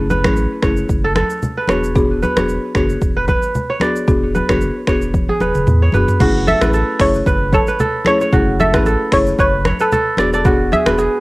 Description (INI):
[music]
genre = afrobeats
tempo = 113 BPM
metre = 4/4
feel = swing 55% on 16ths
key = F# minor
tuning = A4 = 440 Hz
[part]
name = buzzing marimba with medium mallets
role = accompaniment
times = 0.0-11.1 s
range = A3 to G#4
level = -20 LUFS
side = left 2 dB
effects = cassette tape
[part]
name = kora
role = riff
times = 0.0-11.2 s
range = F#4 to D5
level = -19 LUFS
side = right 2 dB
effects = cassette tape, tape echo
[part]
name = warm sub bass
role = bass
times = 0.0-11.1 s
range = E1 to E2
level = -20 LUFS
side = equal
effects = none
[part]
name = afro-pop drum kit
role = drums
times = 0.1-11.1 s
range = crash cymbal, finger snaps, hi-hat, kick drum, rim click, shaker, toms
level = -18 LUFS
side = equal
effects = overdrive, cassette tape
[part]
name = congas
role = percussion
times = 0.1-11.0 s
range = none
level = -22 LUFS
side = left 1 dB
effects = none
[part]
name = hollow square pluck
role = melody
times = 6.5-10.8 s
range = A4 to E5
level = -18 LUFS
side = equal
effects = chorus, tape echo
[sound]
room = light reverb, digital ambience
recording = home recording on cassette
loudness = -13 LUFS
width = side -21 dB against mid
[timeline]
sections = 0.0-6.2 A section; 6.2-11.2 B section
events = drum fill 5.1-6.2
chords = 0.0 F#m7; 1.7 E7; 6.2 F#m7; 10.2 E7